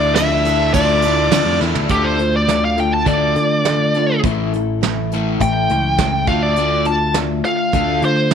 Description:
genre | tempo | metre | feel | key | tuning
folk rock and heartland rock | 103 BPM | 4/4 | straight | D minor | A4 = 440 Hz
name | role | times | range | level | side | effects
bluesy overdriven lead guitar | melody | 0.0-8.3 s | G4 to A5 | -18 LUFS | equal | distortion, slapback echo
picked old ladder-braced acoustic guitar | accompaniment | 0.0-8.3 s | A2 to A4 | -23 LUFS | left 12 dB | none
bright tonewheel organ | sustained chords | 0.0-1.9 s | D4 to A4 | -31 LUFS | right 1 dB | none
overdriven electric guitar | riff | 0.0-8.3 s | A2 to E4 | -23 LUFS | equal | none
picked electric bass | bass | 0.0-8.3 s | A1 to D3 | -20 LUFS | right 1 dB | none
soft brush drum kit | drums | 0.2-8.3 s | hi-hat, kick drum, ride cymbal, snare drum, toms | -22 LUFS | right 6 dB | none
tube shaker | percussion | 0.2-1.5 s | none | -40 LUFS | right 22 dB | none
room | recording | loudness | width
small room ambience | 1960s-style stereo with parts hard left and right | -14 LUFS | side -7 dB against mid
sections
0.0-1.9 A section; 1.9-8.3 B section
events
drum fill 1.6; lead electric guitar solo 1.9-8.3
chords
0.0 Dmadd9; 1.9 Dm; 4.2 A; 6.3 Dm

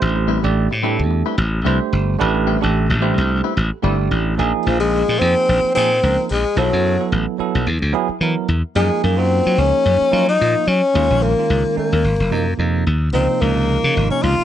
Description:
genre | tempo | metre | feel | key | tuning
jazz | 110 BPM | 4/4 | swing 56% on 16ths | unclear | A4 = 436 Hz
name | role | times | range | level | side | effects
bell-like tine electric piano | accompaniment | 0.0-14.4 s | C3 to D5 | -22 LUFS | right 9 dB | auto-pan
glassy slap bass | bass | 0.0-14.4 s | Gb1 to Gb3 | -18 LUFS | left 1 dB | none
clean electric guitar | stabs | 0.2-4.1 s | G3 to B4 | -25 LUFS | left 11 dB | lush chorus
clear tenor saxophone | melody | 4.7-14.4 s | F3 to F4 | -17 LUFS | left 3 dB | none
room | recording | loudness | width
moderate large studio reverb, RT60 0.9 s, digital ambience | nothing above 10.3 kHz | -15 LUFS | side -11 dB against mid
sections
0.0-4.4 A section; 4.4-14.4 B section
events
none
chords
0.0 Am9; 4.4 Bb7sus2; 6.6 B5; 7.7 Eadd9; 8.8 Gbmaj7; 10.9 Ebsus2; 12.0 Ab13 (rootless); 13.1 Db69

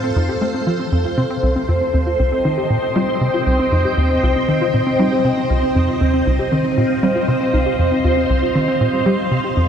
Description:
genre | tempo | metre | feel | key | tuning
ambient, sequencer-driven space music | 118 BPM | 4/4 | straight | C dorian | A4 = 440 Hz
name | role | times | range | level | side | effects
string machine, full ensemble | sustained chords | 0.0-9.7 s | C4 to G5 | -18 LUFS | equal | phaser, ensemble chorus
warbly dusty pluck | arpeggios | 0.0-9.7 s | G3 to G4 | -24 LUFS | equal | chorus, auto-pan, cassette tape, ping-pong delay
tight sequencer bass | riff | 0.0-9.7 s | C2 to A3 | -19 LUFS | equal | wide subtle chorus, ping-pong delay
room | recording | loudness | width
wet huge ambient reverb, RT60 8.5 s | dreamy mix soaked in reverb, cassette tape | -15 LUFS | side -8 dB against mid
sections
0.0-9.7 A section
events
filter sweep on analog synth bass 0.0-9.7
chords
0.0 F; 1.4 Cm

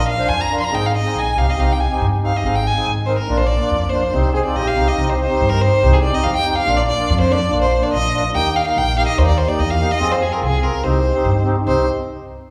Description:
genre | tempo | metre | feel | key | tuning
klezmer | 143 BPM | 2/4 | straight | C minor | A4 = 441 Hz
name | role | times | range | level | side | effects
rich violin | melody | 0.0-11.9 s | Ab4 to C6 | -22 LUFS | equal | none
mellow accordion | accompaniment | 0.0-11.9 s | Bb3 to C5 | -24 LUFS | equal | none
upright bass | bass | 0.0-11.9 s | Ab1 to G2 | -21 LUFS | equal | none
bright trombone | second line | 4.3-5.0 s | G4 to Ab4 | -26 LUFS | equal | none
room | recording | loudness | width
wet concert hall reverb, RT60 1.9 s | recorded in a church or concert hall, small room reverb | -17 LUFS | mono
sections
0.0-5.0 A section; 5.0-11.7 B section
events
speeding up 0.0-12.5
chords
0.0 Bb; 0.7 Ab; 1.6 Cm; 2.4 Ab; 3.3 Bb; 4.1 Cm; 6.7 Bb; 8.3 Eb; 10.0 Fm; 10.8 Cm

